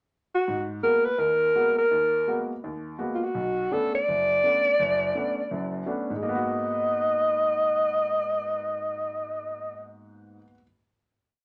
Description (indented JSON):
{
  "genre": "jazz",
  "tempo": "167 BPM",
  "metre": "4/4",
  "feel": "swing 63% on 8ths",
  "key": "unclear",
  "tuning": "A4 = 440 Hz",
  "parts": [
    { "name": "breathy alto saxophone", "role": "melody", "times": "0.3-9.8 s", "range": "E#4 to D#5", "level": "-26 LUFS", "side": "equal", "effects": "none" },
    { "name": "warm grand piano", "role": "accompaniment", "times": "0.5-10.6 s", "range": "F#1 to F#4", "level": "-35 LUFS", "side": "equal", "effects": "none" }
  ],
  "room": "moderate studio reverb, RT60 0.7 s",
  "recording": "nothing above 10.3 kHz",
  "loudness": "-25 LUFS",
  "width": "mono",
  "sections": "0.0-0.5 pickup bar; 0.5-6.2 A section; 6.2-9.1 final chord",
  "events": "none",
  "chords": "0.5 G#m9; 3.3 Bm9; 6.2 G#m9"
}